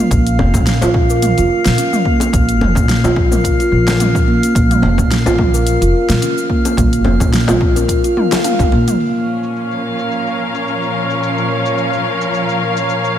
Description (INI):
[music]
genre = organic downtempo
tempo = 108 BPM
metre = 4/4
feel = swing 55% on 16ths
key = Bb minor pentatonic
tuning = A4 = 440 Hz
[part]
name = drifting glass-harmonics texture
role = texture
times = 0.0-13.2 s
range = Db5 to F5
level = -22 LUFS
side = equal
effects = chorus, built-in reverb
[part]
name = kalimba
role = arpeggios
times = 0.1-8.9 s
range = Bb3 to F5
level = -17 LUFS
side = equal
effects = low-pass filter, ping-pong delay
[part]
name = upright bass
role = bass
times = 0.1-8.8 s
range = F1 to Bb2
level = -16 LUFS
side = equal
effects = none
[part]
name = deep house drum kit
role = drums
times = 0.1-13.1 s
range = cabasa, crash cymbal, hi-hat, snare drum, toms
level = -20 LUFS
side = equal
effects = overdrive, low-pass filter on perc, low-pass filter on snare, low-pass filter on toms, low-pass filter on hats, low-pass filter on cymbals, slapback echo
[part]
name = electronic kick drum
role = drums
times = 0.1-8.7 s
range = none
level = -17 LUFS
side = equal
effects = overdrive
[part]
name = djembe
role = percussion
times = 0.4-8.8 s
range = none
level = -24 LUFS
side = left 3 dB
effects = slapback echo
[part]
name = muted studio string section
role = sustained chords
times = 9.0-13.2 s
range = Bb2 to F5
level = -17 LUFS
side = left 1 dB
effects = sidechain pumping
[sound]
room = moderate lush hall reverb, RT60 2.5 s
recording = big arena sound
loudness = -12 LUFS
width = side -10 dB against mid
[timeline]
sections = 0.0-9.0 A section; 9.0-13.2 B section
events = drum fill 8.2-9.0; filter sweep on drum 9.0-13.2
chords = 0.0 Bbm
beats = | 0.11 0.67 1.22 1.78 | 2.33 2.89 3.44 4.00 | 4.55 5.11 5.67 6.22 | 6.78 7.33 7.89 8.44 | 9.00 9.55 10.11 10.67 | 11.22 11.78 12.33 12.89